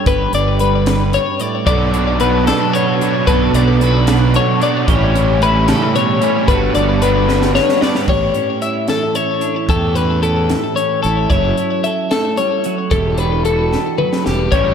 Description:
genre	math rock and midwest emo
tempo	75 BPM (dotted quarters)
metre	6/8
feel	straight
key	unclear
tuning	A4 = 439 Hz
part	twelve-string electric guitar	accompaniment	0.0-14.7 s	G2 to B4	-20 LUFS	right 9 dB	lush chorus
part	twelve-string electric guitar	arpeggios	0.0-14.7 s	G4 to E5	-17 LUFS	left 6 dB	ping-pong delay
part	fuzz fingered electric bass	bass	0.1-14.7 s	E1 to E2	-17 LUFS	equal	overdrive
part	crisp fusion drum kit	drums	0.1-14.7 s	crash cymbal, hi-hat, kick drum, snare drum, toms	-21 LUFS	right 1 dB	none
part	overdriven semi-hollow guitar	riff	1.7-8.1, 14.5-14.7 s	G2 to G4	-19 LUFS	right 2 dB	ensemble chorus
room	wet church reverb, RT60 3.4 s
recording	dreamy mix soaked in reverb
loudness	-13 LUFS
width	side -7 dB against mid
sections	0.0-8.1 A section; 8.1-14.7 B section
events	drum fill 7.3-8.1, 13.7-14.5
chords	0.0 Gadd9; 1.7 Bm7; 4.9 A7; 6.5 Gmaj7; 8.1 A7; 11.3 F#m7; 12.9 Em9

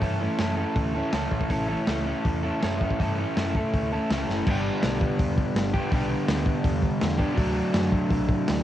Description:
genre	garage rock duo or trio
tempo	164 BPM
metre	4/4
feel	straight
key	unclear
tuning	A4 = 441 Hz
part	crunchy overdriven guitar	riff	0.0-8.6 s	G2 to A4	-26 LUFS	equal	cassette tape
part	hollow-body short-scale picked electric bass	bass	0.0-8.6 s	E1 to G2	-31 LUFS	equal	tube saturation
part	crunchy breakbeat drum kit	drums	0.0-8.6 s	crash cymbal, hi-hat, kick drum, snare drum	-27 LUFS	equal	cassette tape
room	light reverb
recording	home recording on cassette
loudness	-23 LUFS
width	side -12 dB against mid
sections	0.0-4.5 A section; 4.5-8.6 B section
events	drum fill 4.3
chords	0.0 A; 4.5 G; 7.4 D

